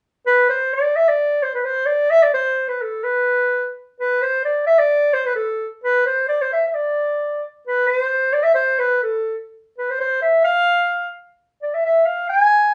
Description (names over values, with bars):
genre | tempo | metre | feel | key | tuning
klezmer | 130 BPM | 2/4 | straight | D dorian sharp4 | A4 = 441 Hz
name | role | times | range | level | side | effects
mellow clarinet | solo | 0.3-12.7 s | A4 to G#5 | -18 LUFS | equal | none
room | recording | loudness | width
wet studio reverb, RT60 0.5 s | band playing live in one room, nothing above 10.8 kHz | -19 LUFS | mono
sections
0.3-7.7 A section; 7.7-12.7 A section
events
none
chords
none